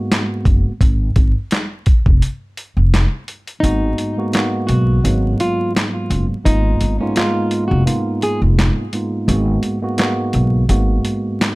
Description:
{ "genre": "hip hop, boom-bap hip-hop", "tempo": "85 BPM", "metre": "4/4", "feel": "swing 55% on 16ths", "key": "G# dorian", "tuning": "A4 = 439 Hz", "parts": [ { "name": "mellow tine electric piano", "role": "accompaniment", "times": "0.0-11.6 s", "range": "G#2 to F#4", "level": "-20 LUFS", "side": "right 1 dB", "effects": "cassette tape, high-pass filter, low-pass filter" }, { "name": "boom bap sampler-style drum kit", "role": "drums", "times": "0.1-11.6 s", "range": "handclaps, hi-hat, kick drum, snare drum", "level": "-17 LUFS", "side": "equal", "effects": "none" }, { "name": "upright bass", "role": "bass", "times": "0.5-11.0 s", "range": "F1 to B1", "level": "-15 LUFS", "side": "equal", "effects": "none" }, { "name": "flamenco guitar", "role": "melody", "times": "3.6-8.4 s", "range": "C#4 to G#4", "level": "-22 LUFS", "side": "equal", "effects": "high-pass filter, low-pass filter, digital delay" } ], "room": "light reverb", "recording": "dark, warm production, vinyl crackle", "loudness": "-14 LUFS", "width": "side -22 dB against mid", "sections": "0.0-3.6 A section; 3.6-11.6 B section", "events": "break 2.2-3.6; kick muted 3.6-11.6", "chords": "0.0 G#m9; 0.8 Fm; 3.6 G#m9; 6.5 G#m69; 9.3 G#m9" }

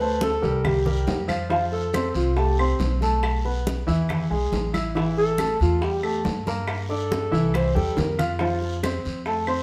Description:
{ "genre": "Afro-Cuban jazz", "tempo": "139 BPM", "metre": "4/4", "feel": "straight", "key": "F major", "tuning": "A4 = 439 Hz", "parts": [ { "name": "breathy alto saxophone", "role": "melody", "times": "0.0-8.2 s", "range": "F4 to C5", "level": "-28 LUFS", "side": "equal", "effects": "none" }, { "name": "warm baby grand piano", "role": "accompaniment", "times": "0.0-9.6 s", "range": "E3 to F6", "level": "-28 LUFS", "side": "equal", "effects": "none" }, { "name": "upright bass", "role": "bass", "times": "0.0-9.6 s", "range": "A1 to G2", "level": "-29 LUFS", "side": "equal", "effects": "none" }, { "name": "bongos", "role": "percussion", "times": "0.0-9.6 s", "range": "none", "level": "-35 LUFS", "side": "equal", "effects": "none" }, { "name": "congas", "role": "percussion", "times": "0.0-9.6 s", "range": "none", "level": "-33 LUFS", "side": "equal", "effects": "none" }, { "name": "guiro", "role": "percussion", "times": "0.2-9.6 s", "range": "none", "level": "-43 LUFS", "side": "equal", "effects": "none" }, { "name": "claves", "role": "percussion", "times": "0.6-9.6 s", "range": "none", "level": "-40 LUFS", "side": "equal", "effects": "none" } ], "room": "moderate stone room reverb, RT60 1.1 s", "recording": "band playing live in one room", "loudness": "-24 LUFS", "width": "mono", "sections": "0.0-1.5 A section; 1.5-9.6 B section", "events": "alto saxophone solo 1.5-9.6; drum fill 7.5-8.4", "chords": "0.0 D7(no3); 0.6 C5; 1.5 Fadd9; 3.2 B7sus4; 4.1 E; 5.0 A5; 6.7 Gm; 7.5 C; 8.4 F" }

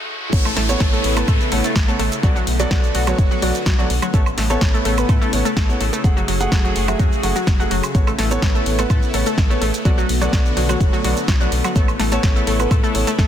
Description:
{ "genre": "progressive house", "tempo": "126 BPM", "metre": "4/4", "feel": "straight", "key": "A major", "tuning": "A4 = 438 Hz", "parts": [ { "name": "supersaw pad", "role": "sustained chords", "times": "0.0-13.3 s", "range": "C#3 to G#4", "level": "-26 LUFS", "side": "left 1 dB", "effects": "phaser, sidechain pumping" }, { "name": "riser, swell and downlifter", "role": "sound effects", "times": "0.0-4.1 s", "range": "none", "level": "-28 LUFS", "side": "equal", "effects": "none" }, { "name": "warm grand piano", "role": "stabs", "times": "0.3-13.1 s", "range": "A3 to F#5", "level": "-24 LUFS", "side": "right 2 dB", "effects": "sidechain pumping, ping-pong delay" }, { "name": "round analog bass", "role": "bass", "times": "0.3-13.3 s", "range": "F#1 to A2", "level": "-23 LUFS", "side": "equal", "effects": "sidechain pumping, high-pass filter" }, { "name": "deep house drum kit", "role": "drums", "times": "0.3-13.3 s", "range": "crash cymbal, hi-hat, shaker, snare drum, woodblock", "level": "-25 LUFS", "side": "right 1 dB", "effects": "sidechain pumping on hats, sidechain pumping on perc, sidechain pumping on cymbals" }, { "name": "electronic kick drum", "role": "drums", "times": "0.3-13.3 s", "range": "none", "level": "-17 LUFS", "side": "equal", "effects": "none" }, { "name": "analog pluck", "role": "arpeggios", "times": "0.5-13.3 s", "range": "F#3 to A4", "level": "-24 LUFS", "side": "left 1 dB", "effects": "chorus, sidechain pumping, ping-pong delay" } ], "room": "digital ambience", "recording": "dense, heavily limited modern master, high-pass filter", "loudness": "-15 LUFS", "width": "side -10 dB against mid", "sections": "0.3-13.3 A section", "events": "break 0.0-0.3; riser 0.0-0.3; swell 0.0-0.3; drop 0.3-13.3", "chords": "0.3 Aadd9; 2.2 Bm7; 4.1 Aadd9; 6.0 F#madd9; 7.9 Aadd9; 9.9 Bm7; 11.8 Aadd9" }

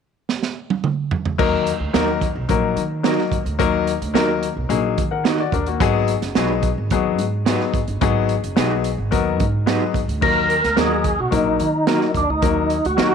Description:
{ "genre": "uptempo 1960s-style soul", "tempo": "109 BPM", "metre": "4/4", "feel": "straight", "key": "Eb harmonic minor", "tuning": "A4 = 440 Hz", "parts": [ { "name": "crunchy breakbeat drum kit", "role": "drums", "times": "0.3-13.1 s", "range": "crash cymbal, hi-hat, kick drum, snare drum, toms", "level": "-23 LUFS", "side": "right 5 dB", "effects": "none" }, { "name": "bright upright piano", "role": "accompaniment", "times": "1.4-13.1 s", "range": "Gb3 to Gb5", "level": "-21 LUFS", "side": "left 10 dB", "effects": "none" }, { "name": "upright bass", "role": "bass", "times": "1.4-13.1 s", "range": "Gb1 to Eb3", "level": "-25 LUFS", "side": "right 1 dB", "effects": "none" }, { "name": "electric guitar through a small old amp", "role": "stabs", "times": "1.9-13.1 s", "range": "Ab3 to Cb5", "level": "-26 LUFS", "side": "right 10 dB", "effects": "lush chorus" }, { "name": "percussive tonewheel organ", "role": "melody", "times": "10.2-13.1 s", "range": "D4 to Bb4", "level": "-19 LUFS", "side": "right 1 dB", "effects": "overdrive, chorus vibrato, slow rotary speaker" } ], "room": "light reverb", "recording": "1960s-style stereo with parts hard left and right", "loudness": "-17 LUFS", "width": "side -6 dB against mid", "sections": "0.0-1.4 A section; 1.4-10.2 B section; 10.2-13.1 C section", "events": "drum fill 0.3-1.4", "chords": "0.0 N.C.; 1.4 Ebm; 5.8 Abm7; 10.2 Ebm" }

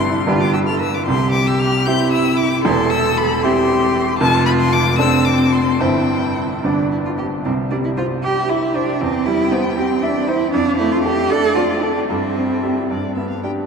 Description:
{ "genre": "quick classical-period movement for piano trio", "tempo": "71-80 BPM (dotted quarters)", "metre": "6/8", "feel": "rubato", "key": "C major", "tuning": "A4 = 439 Hz", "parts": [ { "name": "rich violin", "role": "melody", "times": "0.0-13.5 s", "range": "D5 to G6", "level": "-24 LUFS", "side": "left 7 dB", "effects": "none" }, { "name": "warm cello", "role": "second line", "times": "0.0-12.9 s", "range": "B3 to B4", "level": "-19 LUFS", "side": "right 2 dB", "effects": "none" }, { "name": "bright baby grand piano", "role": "accompaniment", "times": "0.0-13.7 s", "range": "E1 to E5", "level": "-18 LUFS", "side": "equal", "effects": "none" } ], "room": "wet cathedral reverb, RT60 6.6 s", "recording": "in a vast, echoing space", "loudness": "-15 LUFS", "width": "side -6 dB against mid", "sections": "0.0-7.5 A section; 7.5-13.7 B section", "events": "none", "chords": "0.3 G; 1.1 C; 2.6 C/E; 4.2 Dm7/F; 5.8 C/G; 6.6 G; 7.5 C; 9.0 C/E; 10.5 Dm/F; 12.1 C/G; 12.9 G" }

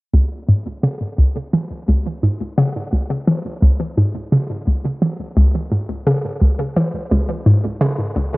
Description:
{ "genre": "ambient", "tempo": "86 BPM", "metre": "4/4", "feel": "straight", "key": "C# minor", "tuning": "A4 = 442 Hz", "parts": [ { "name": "hollow square pluck", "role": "riff", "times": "0.1-8.3 s", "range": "C#2 to E3", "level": "-16 LUFS", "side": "equal", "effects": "chorus, tape echo" } ], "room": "moderate spring reverb, RT60 2.8 s", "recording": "home recording on cassette", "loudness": "-16 LUFS", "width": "side -22 dB against mid", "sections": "0.1-8.4 A section", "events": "filter sweep on synth arpeggio sound 0.1-8.4", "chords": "none" }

